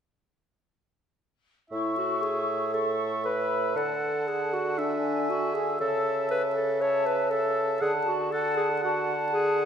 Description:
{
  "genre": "classical, dramatic, fast romantic movement for symphony orchestra",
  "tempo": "118 BPM",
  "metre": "4/4",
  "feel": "straight",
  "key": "A major",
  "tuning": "A4 = 440 Hz",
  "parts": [
    { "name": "clear oboe", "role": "second line", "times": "1.7-9.7 s", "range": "E5 to F#5", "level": "-32 LUFS", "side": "right 1 dB", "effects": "none" },
    { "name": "mellow flute section", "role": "second line", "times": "1.7-9.7 s", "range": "G#5 to C#6", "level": "-32 LUFS", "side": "left 2 dB", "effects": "none" },
    { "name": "warm clarinet", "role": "second line", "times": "1.7-9.7 s", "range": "D4 to C#5", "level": "-29 LUFS", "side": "left 1 dB", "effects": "none" },
    { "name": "mellow bassoon", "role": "accompaniment", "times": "1.7-9.7 s", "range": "A2 to D3", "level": "-30 LUFS", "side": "right 2 dB", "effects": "none" }
  ],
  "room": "wet scoring stage reverb, RT60 1.5 s",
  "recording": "none",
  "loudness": "-25 LUFS",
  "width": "side -8 dB against mid",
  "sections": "1.7-9.7 A section",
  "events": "none",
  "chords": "1.7 A; 3.8 D; 5.8 A/C#; 7.8 D"
}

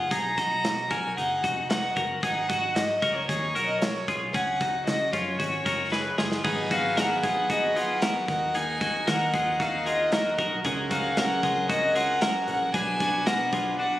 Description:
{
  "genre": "jangly indie pop",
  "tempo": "114 BPM",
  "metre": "4/4",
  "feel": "straight",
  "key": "unclear",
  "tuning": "A4 = 440 Hz",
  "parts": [
    { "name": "warm violin", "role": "melody", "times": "0.0-14.0 s", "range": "C#5 to A#5", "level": "-27 LUFS", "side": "equal", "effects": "analog delay" },
    { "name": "twelve-string electric guitar", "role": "arpeggios", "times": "0.0-14.0 s", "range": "C#4 to B4", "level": "-29 LUFS", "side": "left 2 dB", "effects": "lush chorus" },
    { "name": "vintage muted fingered electric bass", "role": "bass", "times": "0.0-13.8 s", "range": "E#1 to D#3", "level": "-37 LUFS", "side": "equal", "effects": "none" },
    { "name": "big rock drum kit", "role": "drums", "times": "0.1-13.7 s", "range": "crash cymbal, hi-hat, kick drum, snare drum", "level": "-31 LUFS", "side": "equal", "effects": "none" },
    { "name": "fingerpicked plugged-in steel-string acoustic guitar", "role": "accompaniment", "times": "6.4-14.0 s", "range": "G#2 to B4", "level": "-34 LUFS", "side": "right 3 dB", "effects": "none" },
    { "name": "overdriven combo organ", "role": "accompaniment", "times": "6.4-14.0 s", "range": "D4 to B4", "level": "-32 LUFS", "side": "right 1 dB", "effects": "none" }
  ],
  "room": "moderate plate reverb, RT60 1.6 s, small room ambience",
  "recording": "recorded on a phone in the room, studio reverb",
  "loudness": "-23 LUFS",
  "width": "side -14 dB against mid",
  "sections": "0.0-6.4 A section; 6.4-14.0 B section",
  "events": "drum fill 5.9-6.4",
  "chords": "0.1 Bmaj7; 2.2 G#m7; 4.3 C#7sus4; 6.4 G#m7; 8.3 D#m; 10.6 F#add9/C#; 12.7 Bm"
}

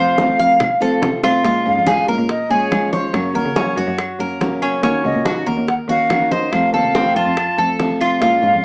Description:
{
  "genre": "latin, Cuban son and guajira",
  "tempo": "142 BPM",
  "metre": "4/4",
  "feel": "straight",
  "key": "Bb minor",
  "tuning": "A4 = 440 Hz",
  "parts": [
    { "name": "silver concert flute", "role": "melody", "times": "0.0-8.6 s", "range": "C5 to A5", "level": "-22 LUFS", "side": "equal", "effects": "none" },
    { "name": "nylon-string guitar", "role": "accompaniment", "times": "0.0-8.6 s", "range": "C3 to Gb4", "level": "-24 LUFS", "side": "equal", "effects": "none" },
    { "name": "Cuban tres", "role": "arpeggios", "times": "0.0-8.6 s", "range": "C4 to F5", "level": "-21 LUFS", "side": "equal", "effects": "none" },
    { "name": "warm cello", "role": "bass", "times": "0.0-8.6 s", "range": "Db2 to Db3", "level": "-26 LUFS", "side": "equal", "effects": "none" },
    { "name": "bongos", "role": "percussion", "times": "0.2-8.4 s", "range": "none", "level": "-27 LUFS", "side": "equal", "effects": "none" },
    { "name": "congas", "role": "percussion", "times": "0.2-8.6 s", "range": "none", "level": "-28 LUFS", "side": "equal", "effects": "none" },
    { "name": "claves", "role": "percussion", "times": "0.6-8.2 s", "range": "none", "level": "-32 LUFS", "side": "equal", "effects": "none" }
  ],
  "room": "moderate small room reverb, RT60 0.5 s",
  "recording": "small speaker sound",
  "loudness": "-17 LUFS",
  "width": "mono",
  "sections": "0.0-1.4 A section; 1.4-8.6 B section",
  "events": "drum fill 1.2",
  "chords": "0.0 F; 1.4 Bbm7; 3.1 Gb; 4.8 Ebm7; 6.5 F"
}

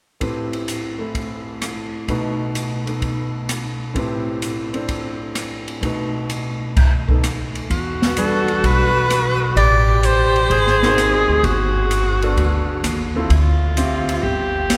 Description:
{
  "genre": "jazz, small-group swing and bop",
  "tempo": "128 BPM",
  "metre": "4/4",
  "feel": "swing 68% on 8ths",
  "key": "unclear",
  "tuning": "A4 = 440 Hz",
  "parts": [
    { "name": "clear concert grand piano", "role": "accompaniment", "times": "0.2-14.2 s", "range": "A2 to E5", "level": "-27 LUFS", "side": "equal", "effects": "none" },
    { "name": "open jazz drum kit", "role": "drums", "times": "0.2-14.8 s", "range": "crash cymbal, hi-hat, kick drum, ride cymbal, rim click, snare drum", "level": "-26 LUFS", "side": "equal", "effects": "none" },
    { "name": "clear alto saxophone", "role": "second line", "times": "7.7-14.8 s", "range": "F4 to G#4", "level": "-23 LUFS", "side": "equal", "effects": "none" },
    { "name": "upright bass", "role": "bass", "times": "7.7-14.8 s", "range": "G1 to E2", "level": "-22 LUFS", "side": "equal", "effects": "none" },
    { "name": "clear soprano saxophone", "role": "melody", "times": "8.2-11.3 s", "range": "A4 to D5", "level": "-22 LUFS", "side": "equal", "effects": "none" }
  ],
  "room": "wet cathedral reverb, RT60 5.0 s",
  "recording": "recorded in a church or concert hall",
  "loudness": "-19 LUFS",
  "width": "mono",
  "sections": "0.2-7.7 A section; 7.7-14.8 B section",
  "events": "none",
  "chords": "0.2 Am7; 2.1 B7; 4.0 Am7; 5.8 B7; 7.7 Em9; 9.6 Am7; 10.5 G#9; 11.4 Gmaj9; 13.3 Dm11; 14.2 N.C."
}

